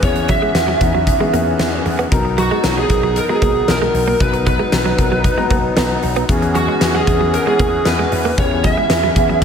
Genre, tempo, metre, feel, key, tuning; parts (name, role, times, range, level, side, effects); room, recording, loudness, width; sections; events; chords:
1980s-style pop; 115 BPM; 4/4; straight; A4 = 441 Hz
lead guitar through a small cranked amp; melody; 0.0-9.4 s; F#4 to E5; -18 LUFS; right 2 dB; overdrive
dark grand piano; accompaniment; 0.0-9.4 s; E3 to A#5; -21 LUFS; left 4 dB
musette accordion; sustained chords; 0.0-9.4 s; E3 to G#4; -24 LUFS; equal
slap bass with an envelope filter; bass; 0.0-9.4 s; B1 to E2; -22 LUFS; equal
huge arena drum kit; drums; 0.0-9.4 s; hi-hat, kick drum, snare drum; -18 LUFS; left 1 dB; gated reverb
direct-recorded clean electric guitar; riff; 0.2-9.4 s; F#3 to B3; -24 LUFS; right 7 dB; analog chorus
light reverb, small room ambience; -13 LUFS; side -7 dB against mid
0.0-9.4 A section
0.0 E6; 2.1 Bmaj7; 6.3 E6